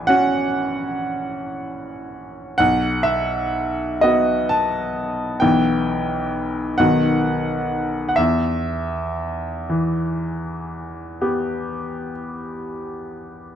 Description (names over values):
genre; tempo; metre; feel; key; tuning
classical, romantic nocturne for solo piano; 39-49 BPM (dotted quarters); 12/8; rubato; E minor; A4 = 439 Hz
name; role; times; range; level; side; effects
bright baby grand piano; solo; 0.0-13.6 s; A#1 to A5; -19 LUFS; equal; none
room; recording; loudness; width
light reverb; dark, warm production; -19 LUFS; side -9 dB against mid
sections
0.0-13.6 A section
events
none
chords
0.0 F#7/A#; 2.6 B5; 5.4 Em/B; 6.8 B; 8.2 Em